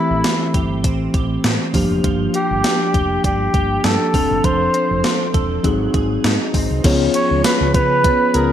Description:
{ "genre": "1980s-style pop", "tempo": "100 BPM", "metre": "4/4", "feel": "swing 55% on 16ths", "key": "unclear", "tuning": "A4 = 441 Hz", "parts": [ { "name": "warm flugelhorn", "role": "melody", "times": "0.0-8.5 s", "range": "E4 to Db5", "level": "-19 LUFS", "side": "equal", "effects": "tube saturation, digital delay" }, { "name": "mellow tine electric piano", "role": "accompaniment", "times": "0.0-8.5 s", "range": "E3 to Db5", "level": "-21 LUFS", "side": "left 3 dB", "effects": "slow stereo tremolo" }, { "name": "twelve-string electric guitar", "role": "riff", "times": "0.0-8.5 s", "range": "E3 to A4", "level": "-25 LUFS", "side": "right 7 dB", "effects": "analog chorus" }, { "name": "woody fretless electric bass", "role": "bass", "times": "0.1-8.5 s", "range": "E1 to Db3", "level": "-22 LUFS", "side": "equal", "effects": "none" }, { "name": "gated 80s digital drum machine", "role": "drums", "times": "0.2-8.5 s", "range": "crash cymbal, hi-hat, kick drum, snare drum, tambourine", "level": "-19 LUFS", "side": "equal", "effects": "gated reverb, gated reverb snare, overdrive" } ], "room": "moderate plate reverb, RT60 2.0 s, digital ambience", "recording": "bright 1980s-style digital production", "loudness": "-15 LUFS", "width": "side -10 dB against mid", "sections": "0.0-6.8 A section; 6.8-8.5 B section", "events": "none", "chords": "0.0 Am7; 1.7 Gm7; 4.1 F6; 5.6 Ab7; 6.8 Db7" }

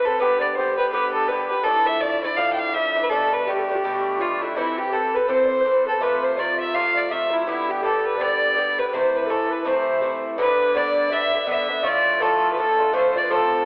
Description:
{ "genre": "celtic folk, Celtic hornpipe", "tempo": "165 BPM", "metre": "4/4", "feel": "swing 60% on 8ths", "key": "unclear", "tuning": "A4 = 440 Hz", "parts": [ { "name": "rich fiddle", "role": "melody", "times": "0.0-13.7 s", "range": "E4 to G5", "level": "-20 LUFS", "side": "equal", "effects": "none" }, { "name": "bright baroque flute", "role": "second line", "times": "0.0-13.7 s", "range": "E4 to F5", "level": "-26 LUFS", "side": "equal", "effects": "none" }, { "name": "Irish bouzouki", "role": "accompaniment", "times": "0.0-13.7 s", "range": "G2 to B4", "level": "-25 LUFS", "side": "equal", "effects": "none" } ], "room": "wet recital hall reverb, RT60 1.5 s", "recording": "worn, warbling old tape, cassette tape, warbly pitch drift, telephone sound", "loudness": "-18 LUFS", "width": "side -37 dB against mid", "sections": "0.0-10.4 A section; 10.4-13.7 B section", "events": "none", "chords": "0.2 G; 1.6 Dmadd9; 3.1 Gadd9; 4.6 Amadd9; 6.0 F; 7.5 G; 8.9 Am; 10.4 G; 11.8 Dm" }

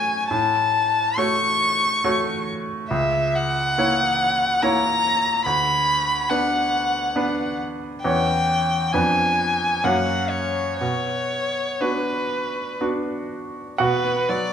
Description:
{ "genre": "classical, romantic duo for violin and grand piano", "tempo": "58-73 BPM", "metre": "3/4", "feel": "rubato", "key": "B minor", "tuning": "A4 = 440 Hz", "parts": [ { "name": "rich violin", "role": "melody", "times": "0.0-14.5 s", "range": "B4 to C#6", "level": "-21 LUFS", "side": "left 1 dB", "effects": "none" }, { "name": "bright grand piano", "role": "accompaniment", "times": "0.0-14.5 s", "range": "C#2 to F#5", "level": "-24 LUFS", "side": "right 1 dB", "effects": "none" } ], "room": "wet recital hall reverb, RT60 1.5 s", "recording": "minimal, uncompressed stereo recording", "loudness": "-19 LUFS", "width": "side -8 dB against mid", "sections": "0.0-13.8 A section", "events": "none", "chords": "0.3 F#m/A; 2.9 F#7/C#; 5.4 Bm/D; 8.0 C#m7b5/E; 8.9 Fdim7; 9.8 F#; 10.8 Bm" }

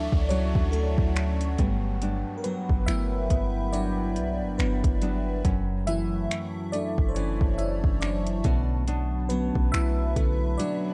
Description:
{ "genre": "contemporary R&B", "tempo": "70 BPM", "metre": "4/4", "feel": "swing 58% on 16ths", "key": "unclear", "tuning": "A4 = 442 Hz", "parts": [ { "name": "FM electric piano with soft pad layer", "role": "accompaniment", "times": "0.0-10.9 s", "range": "D3 to E5", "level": "-33 LUFS", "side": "equal", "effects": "chorus, phaser" }, { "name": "deep dark ambient pad", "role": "sustained chords", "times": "0.0-10.9 s", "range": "F#3 to C#6", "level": "-38 LUFS", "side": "equal", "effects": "chorus, built-in reverb, sidechain pumping" }, { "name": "nylon-string guitar", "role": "arpeggios", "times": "0.0-10.9 s", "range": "F#2 to D4", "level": "-35 LUFS", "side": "equal", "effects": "tape echo" }, { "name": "clean 808-style bass", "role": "bass", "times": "0.0-10.6 s", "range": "F#1 to D2", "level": "-30 LUFS", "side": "equal", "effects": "none" }, { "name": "downlifter and reverse cymbal", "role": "sound effects", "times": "0.0-5.4, 10.8-10.9 s", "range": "none", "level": "-50 LUFS", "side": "equal", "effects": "none" }, { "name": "smooth R&B drum kit", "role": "drums", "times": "0.1-10.8 s", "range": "finger snaps, hi-hat, kick drum", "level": "-29 LUFS", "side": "equal", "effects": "overdrive, vintage 12-bit sampler grit" } ], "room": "little or no reverb", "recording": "dark, warm production", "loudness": "-26 LUFS", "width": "mono", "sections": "0.0-10.9 A section", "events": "FM electric piano solo 0.0-10.9; break 10.6-10.9", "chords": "0.0 Dmaj7; 1.6 Gmaj7; 5.4 F#m7; 8.4 Bm7" }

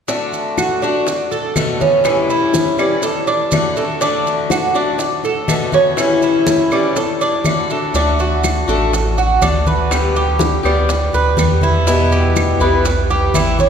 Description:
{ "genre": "latin, Cuban son and guajira", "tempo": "122 BPM", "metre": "4/4", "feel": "straight", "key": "D major", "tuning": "A4 = 440 Hz", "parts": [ { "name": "picked swing-style acoustic guitar", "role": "accompaniment", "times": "0.1-13.7 s", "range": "A2 to G4", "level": "-19 LUFS", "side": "left 4 dB", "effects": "none" }, { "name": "Cuban tres", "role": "arpeggios", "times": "0.1-13.7 s", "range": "C#4 to D5", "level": "-17 LUFS", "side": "right 3 dB", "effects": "none" }, { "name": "bongos", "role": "percussion", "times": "0.1-13.7 s", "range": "none", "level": "-27 LUFS", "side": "left 4 dB", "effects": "none" }, { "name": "congas", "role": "percussion", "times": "0.1-13.7 s", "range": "none", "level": "-24 LUFS", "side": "left 1 dB", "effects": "none" }, { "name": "maracas", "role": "percussion", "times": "0.1-13.7 s", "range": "none", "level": "-28 LUFS", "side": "right 5 dB", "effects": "none" }, { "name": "claves", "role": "percussion", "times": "0.6-13.6 s", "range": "none", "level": "-30 LUFS", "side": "right 2 dB", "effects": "none" }, { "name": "rubbery square bass", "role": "bass", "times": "7.9-13.7 s", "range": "A1 to E2", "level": "-17 LUFS", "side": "equal", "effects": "none" } ], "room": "wet cathedral reverb, RT60 5.7 s", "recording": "recorded in a church or concert hall", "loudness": "-13 LUFS", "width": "side -7 dB against mid", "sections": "0.1-8.0 A section; 8.0-13.7 B section", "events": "none", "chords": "0.1 D; 1.1 Bm7; 2.1 A7; 3.0 D; 5.0 Bm7; 6.0 A7; 7.0 D; 9.9 G/D; 11.9 Em" }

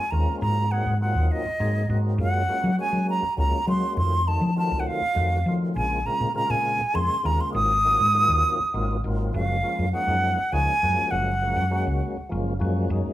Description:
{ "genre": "electric jazz fusion", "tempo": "67 BPM (dotted quarters)", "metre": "6/8", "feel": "straight", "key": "Gb lydian", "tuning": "A4 = 441 Hz", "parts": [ { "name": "bright silver concert flute", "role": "melody", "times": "0.0-12.3 s", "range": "Eb5 to Eb6", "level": "-24 LUFS", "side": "right 1 dB", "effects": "none" }, { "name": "percussive tonewheel organ", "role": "accompaniment", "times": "0.0-13.1 s", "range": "Db3 to Ab4", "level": "-31 LUFS", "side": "left 1 dB", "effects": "slow rotary speaker, overdrive, chorus vibrato" }, { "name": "hollow-body short-scale fingered electric bass", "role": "bass", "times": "0.1-13.1 s", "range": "Gb1 to Gb3", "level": "-24 LUFS", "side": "equal", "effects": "none" } ], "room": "light reverb", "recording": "band playing live in one room", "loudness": "-21 LUFS", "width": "side -14 dB against mid", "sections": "0.0-12.9 A section", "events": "none", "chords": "0.4 Ab13; 2.2 Gbmaj9; 4.0 F7b9; 5.8 Bbm9; 7.5 Ab13; 9.3 Gbmaj9; 11.1 Gbmaj7" }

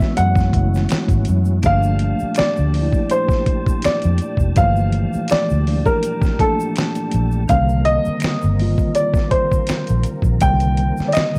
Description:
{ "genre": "R&B, neo-soul", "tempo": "82 BPM", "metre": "4/4", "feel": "swing 54% on 16ths", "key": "unclear", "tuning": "A4 = 437 Hz", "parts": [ { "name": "warm baby grand piano", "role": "melody", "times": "0.0-11.4 s", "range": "A4 to G5", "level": "-23 LUFS", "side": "equal", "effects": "cassette tape, tape echo" }, { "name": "mellow tine electric piano", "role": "accompaniment", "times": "0.0-11.4 s", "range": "D3 to E#4", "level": "-25 LUFS", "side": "equal", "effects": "cassette tape" }, { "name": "percussive tonewheel organ", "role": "sustained chords", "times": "0.0-11.4 s", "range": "Bb2 to A5", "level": "-35 LUFS", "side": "equal", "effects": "overdrive, chorus vibrato, stopped rotary speaker, cassette tape" }, { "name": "dusty soul sampler-style drum kit", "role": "drums", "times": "0.0-11.3 s", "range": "hi-hat, kick drum, snare drum", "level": "-22 LUFS", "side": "equal", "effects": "cassette tape" }, { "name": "egg shaker and finger snaps", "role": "percussion", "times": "0.0-11.4 s", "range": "none", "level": "-39 LUFS", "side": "equal", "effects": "none" }, { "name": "vintage muted fingered electric bass", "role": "bass", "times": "0.2-11.4 s", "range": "F1 to F#2", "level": "-20 LUFS", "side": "equal", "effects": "tube saturation" } ], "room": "small room ambience", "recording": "home recording on cassette", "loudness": "-18 LUFS", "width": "mono", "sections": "0.0-11.4 A section", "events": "none", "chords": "0.0 F#m9; 1.6 Gm9; 7.5 Cm9" }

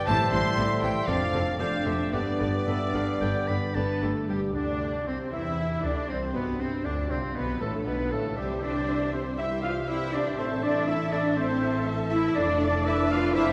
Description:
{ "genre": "classical, dramatic, fast romantic movement for symphony orchestra", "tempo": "118 BPM", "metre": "4/4", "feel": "rubato", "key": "C major", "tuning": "A4 = 440 Hz", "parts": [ { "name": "warm symphonic violin section", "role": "melody", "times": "0.0-13.5 s", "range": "G3 to C6", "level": "-39 LUFS", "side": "equal", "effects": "none" }, { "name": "bright oboe", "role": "second line", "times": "0.0-13.5 s", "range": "B3 to B5", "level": "-40 LUFS", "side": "equal", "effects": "none" }, { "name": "mellow clarinet", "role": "second line", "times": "0.0-13.5 s", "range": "G4 to F5", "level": "-39 LUFS", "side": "equal", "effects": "none" }, { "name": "silver concert flute", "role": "second line", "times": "0.0-13.5 s", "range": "G4 to C6", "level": "-40 LUFS", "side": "equal", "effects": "none" }, { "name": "mellow bassoon", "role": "accompaniment", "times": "0.0-13.5 s", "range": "G2 to C4", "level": "-41 LUFS", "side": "equal", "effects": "none" }, { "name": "concert harp", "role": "arpeggios", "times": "0.0-13.5 s", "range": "F2 to A5", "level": "-36 LUFS", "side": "equal", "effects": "none" }, { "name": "warm symphonic violin section", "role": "second line", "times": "0.1-13.5 s", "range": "D4 to F5", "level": "-42 LUFS", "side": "equal", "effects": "none" }, { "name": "rich studio viola section", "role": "accompaniment", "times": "0.1-13.5 s", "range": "D3 to E5", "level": "-38 LUFS", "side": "equal", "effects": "none" }, { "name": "mellow French horn section", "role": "sustained chords", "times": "0.1-13.5 s", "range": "G3 to F4", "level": "-35 LUFS", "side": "equal", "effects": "none" }, { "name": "warm trombone section", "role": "sustained chords", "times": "0.1-13.5 s", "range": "G2 to C4", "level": "-42 LUFS", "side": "equal", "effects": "none" }, { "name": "mellow trumpet", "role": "stabs", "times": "0.1-13.5 s", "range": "G4 to F5", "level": "-38 LUFS", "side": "equal", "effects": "none" }, { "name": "rich symphonic cello section", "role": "bass", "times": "0.1-13.4 s", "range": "F2 to F4", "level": "-36 LUFS", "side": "equal", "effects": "none" }, { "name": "rich symphonic double bass section", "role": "bass", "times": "0.1-13.5 s", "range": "F1 to E2", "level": "-35 LUFS", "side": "equal", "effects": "none" } ], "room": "wet concert hall reverb, RT60 2.1 s", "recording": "recorded in a church or concert hall", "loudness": "-27 LUFS", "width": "mono", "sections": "0.0-4.3 A section; 4.3-13.5 B section", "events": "none", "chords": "0.1 Am7; 1.1 Dm7/F; 2.1 G; 4.3 C/G; 6.3 G7/B; 8.4 C; 10.4 Am; 12.4 Dm/F" }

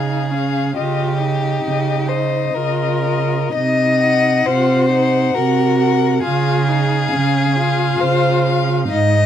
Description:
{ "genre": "classical, slow romantic movement for string quartet", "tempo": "67 BPM", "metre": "3/4", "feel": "rubato", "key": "Db major", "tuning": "A4 = 441 Hz", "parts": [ { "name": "dark violin", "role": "melody", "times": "0.0-8.9 s", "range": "Eb5 to Gb5", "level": "-23 LUFS", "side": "left 9 dB", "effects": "none" }, { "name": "rich violin", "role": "second line", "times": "0.0-9.3 s", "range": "G4 to Eb5", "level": "-19 LUFS", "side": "left 4 dB", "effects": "none" }, { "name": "dark viola", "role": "accompaniment", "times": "0.0-9.3 s", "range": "Db4 to Gb4", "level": "-22 LUFS", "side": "right 1 dB", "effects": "none" }, { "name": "warm cello", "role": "bass", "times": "0.0-9.3 s", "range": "Ab2 to Db3", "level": "-18 LUFS", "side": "right 4 dB", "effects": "none" } ], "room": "light reverb", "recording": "dark, warm production", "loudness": "-14 LUFS", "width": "side -10 dB against mid", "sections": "0.0-9.3 A section", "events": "none", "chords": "0.0 Db; 0.8 Eb7/Db; 3.5 Cm7b5; 6.2 Db" }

